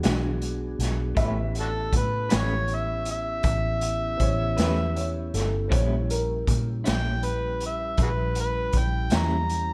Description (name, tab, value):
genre	slow blues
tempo	53 BPM (dotted quarters)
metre	12/8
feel	straight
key	unclear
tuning	A4 = 440 Hz
part	dark upright piano	second line	0.0-6.7 s	A4 to F#5	-34 LUFS	equal	none
part	electric guitar through a small old amp	accompaniment	0.0-9.4 s	A#2 to B4	-36 LUFS	equal	tremolo
part	mellow tonewheel organ	sustained chords	0.0-9.7 s	G3 to G#4	-38 LUFS	equal	slow rotary speaker
part	vintage muted fingered electric bass	bass	0.0-9.7 s	G1 to A#2	-30 LUFS	equal	none
part	raw garage drum kit	drums	0.0-9.7 s	hi-hat, kick drum, snare drum	-29 LUFS	equal	none
part	overdriven harmonica	melody	1.6-9.7 s	D4 to A#5	-31 LUFS	equal	none
room	light reverb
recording	dark, warm production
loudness	-26 LUFS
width	mono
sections	0.0-9.7 A section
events	none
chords	0.0 E9; 1.2 A9; 5.7 A#dim7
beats	0.04 | 1.18 2.31 3.45 4.58 | 5.72 6.86 7.99 9.13